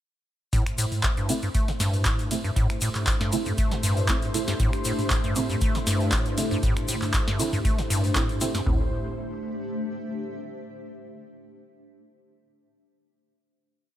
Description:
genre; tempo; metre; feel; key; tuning
acid house; 118 BPM; 4/4; swing 53% on 16ths; A minor; A4 = 440 Hz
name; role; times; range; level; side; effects
lush unison pad; sustained chords; 0.5-8.9 s; A2 to C5; -34 LUFS; equal; chorus, sidechain pumping
acid bass, square; riff; 0.5-8.9 s; G2 to A3; -28 LUFS; equal; overdrive, wide subtle chorus, tape echo
booming analog drum machine; drums; 0.5-8.8 s; kick drum, toms; -26 LUFS; equal; none
booming analog drum machine; drums; 0.5-8.6 s; finger snaps, handclaps, hi-hat, ride cymbal, snare drum, toms; -30 LUFS; equal; none
tube shaker; percussion; 0.5-8.6 s; none; -36 LUFS; left 5 dB; none
granular cloud pad; texture; 2.4-10.7 s; A3 to E5; -34 LUFS; left 2 dB; built-in reverb, sidechain pumping
deep mellow chord stab; stabs; 1.3-8.9 s; A3 to E4; -32 LUFS; right 4 dB; chorus, vintage 12-bit sampler grit, tape echo
room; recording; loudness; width
little or no reverb; none; -23 LUFS; side -12 dB against mid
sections
0.5-8.7 drop; 8.7-10.7 final chord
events
drop 0.5-8.7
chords
0.5 Am

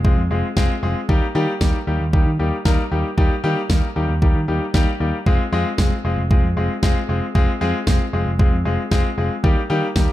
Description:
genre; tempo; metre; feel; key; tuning
synth-pop; 115 BPM; 4/4; straight; F minor; A4 = 440 Hz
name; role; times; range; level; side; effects
bright concert grand piano; accompaniment; 0.0-10.1 s; G3 to Bb4; -22 LUFS; left 2 dB; none
picked electric bass; bass; 0.0-10.1 s; F1 to Eb3; -22 LUFS; equal; none
pop drum kit; drums; 0.0-10.1 s; kick drum, snare drum; -17 LUFS; equal; none
room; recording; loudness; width
light reverb; dark, warm production; -17 LUFS; side -14 dB against mid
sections
0.0-10.1 A section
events
none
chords
0.0 Fm; 1.1 Eb; 5.3 Fm; 9.4 Eb

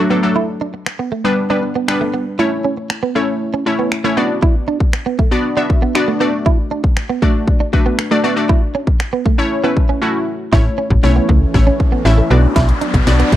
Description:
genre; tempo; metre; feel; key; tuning
dance-pop; 118 BPM; 4/4; straight; unclear; A4 = 441 Hz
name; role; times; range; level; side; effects
glassy wavetable pluck; accompaniment; 0.0-13.3 s; F#3 to E5; -17 LUFS; left 2 dB; chorus, sidechain pumping
direct-recorded clean electric guitar; riff; 0.0-13.4 s; A3 to E4; -19 LUFS; right 6 dB; analog chorus
house drum kit; drums; 0.9-13.4 s; finger snaps, hi-hat, kick drum, snare drum; -15 LUFS; equal; none
lush unison pad; sustained chords; 10.9-13.4 s; E3 to D4; -24 LUFS; equal; chorus, sidechain pumping
slap-like FM bass; bass; 10.5-13.4 s; A1 to C#2; -13 LUFS; equal; sidechain pumping
riser; sound effects; 11.4-13.4 s; none; -26 LUFS; left 2 dB; none
room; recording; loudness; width
little or no reverb; dry, close 1970s-style studio recording; -13 LUFS; side -13 dB against mid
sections
0.0-10.5 A section; 10.5-13.4 B section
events
break 10.0-10.5; build-up 10.5-13.4; drum fill 10.5-13.4; riser 11.4-13.4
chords
0.4 G; 2.4 A; 4.2 Bm; 8.5 A; 12.3 Bm

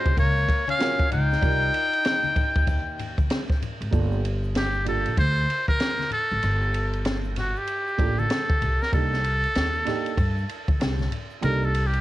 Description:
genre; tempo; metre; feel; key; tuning
hip hop, jazz-hop; 96 BPM; 4/4; swing 62% on 16ths; G minor; A4 = 440 Hz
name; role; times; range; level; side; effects
trumpet with metal mute; melody; 0.0-12.0 s; F#4 to G5; -26 LUFS; equal; cassette tape, tape echo
clear trombone; second line; 0.0-3.3 s; Ab3 to Eb4; -32 LUFS; left 9 dB; cassette tape
dark upright piano; accompaniment; 0.0-11.7 s; Bb3 to D5; -31 LUFS; right 9 dB; cassette tape
upright bass; bass; 0.1-12.0 s; G1 to G2; -26 LUFS; equal; none
open jazz drum kit; drums; 0.1-12.0 s; hi-hat, kick drum, ride cymbal, snare drum; -26 LUFS; equal; cassette tape
egg shaker and congas; percussion; 0.1-12.0 s; none; -36 LUFS; left 6 dB; none
room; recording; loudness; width
studio reverb; home recording on cassette; -21 LUFS; side -16 dB against mid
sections
0.0-3.9 A section; 3.9-12.0 B section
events
muted trumpet solo 3.9-12.0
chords
0.0 Ebm9; 1.4 Cm11 (rootless); 3.9 Gm9; 8.9 Cm9

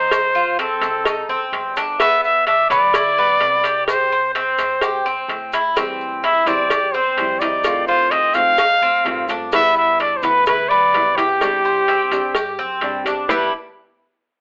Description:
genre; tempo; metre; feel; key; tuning
latin, Cuban son and guajira; 128 BPM; 4/4; straight; G major; A4 = 440 Hz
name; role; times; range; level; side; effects
breathy trumpet; melody; 0.0-13.5 s; G4 to F5; -19 LUFS; equal; none
Cuban tres; arpeggios; 0.0-13.5 s; G3 to C5; -23 LUFS; equal; none
upright bass; bass; 0.0-13.5 s; G1 to A2; -44 LUFS; equal; none
cowbell and bongos; percussion; 0.1-13.4 s; none; -26 LUFS; equal; none
maracas; percussion; 0.1-13.4 s; none; -42 LUFS; equal; none
nylon-string guitar; accompaniment; 5.8-13.5 s; C3 to G4; -28 LUFS; equal; none
room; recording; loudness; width
moderate studio reverb, RT60 0.8 s; telephone sound; -17 LUFS; mono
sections
0.0-13.3 A section; 13.3-14.4 B section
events
none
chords
0.1 F7; 2.0 G6; 3.9 C5; 5.8 Am7; 7.6 F7; 9.5 G6; 11.4 Csus2; 13.3 G6

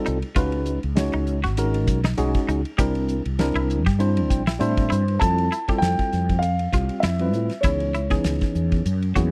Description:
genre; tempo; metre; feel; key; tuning
electric jazz fusion; 99 BPM; 4/4; swing 55% on 16ths; unclear; A4 = 444 Hz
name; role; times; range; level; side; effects
tine electric piano; accompaniment; 0.0-9.3 s; Fb3 to G5; -28 LUFS; equal; none
clean electric guitar; stabs; 0.1-9.3 s; Eb4 to Ab4; -33 LUFS; equal; analog chorus
mellow fretless electric bass; bass; 0.1-9.3 s; Ab1 to A2; -26 LUFS; equal; ensemble chorus
damped 70s drum kit; drums; 0.1-9.3 s; hi-hat, kick drum, ride cymbal, snare drum; -27 LUFS; equal; none
dark grand piano; melody; 5.2-9.3 s; Db5 to A5; -29 LUFS; equal; none
room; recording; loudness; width
small room ambience; dry, close 1970s-style studio recording; -22 LUFS; mono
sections
0.0-5.2 A section; 5.2-9.3 B section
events
tine electric piano fill 4.0-5.2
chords
0.4 Db9sus4; 2.8 C7; 5.2 Fmaj7; 7.6 Dbm7

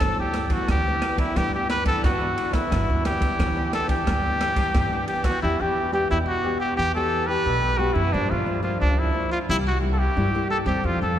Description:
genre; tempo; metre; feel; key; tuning
samba and choro; 89 BPM; 4/4; straight; G major, E minor from 5.4 s; A4 = 439 Hz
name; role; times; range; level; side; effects
clear trumpet; melody; 0.0-11.2 s; D4 to B4; -24 LUFS; equal; none
nylon-string guitar; accompaniment; 0.0-11.2 s; G2 to A4; -28 LUFS; left 1 dB; none
upright bass; bass; 0.0-11.2 s; G1 to G2; -27 LUFS; equal; none
open jazz drum kit; drums; 0.0-5.4 s; kick drum, ride cymbal, rim click; -26 LUFS; right 1 dB; none
room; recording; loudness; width
wet cathedral reverb, RT60 4.9 s; recorded in a church or concert hall; -20 LUFS; side -10 dB against mid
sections
0.0-5.4 A section; 5.4-11.2 B section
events
none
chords
0.0 G6; 5.4 Em7; 8.1 Gm7; 9.5 C7

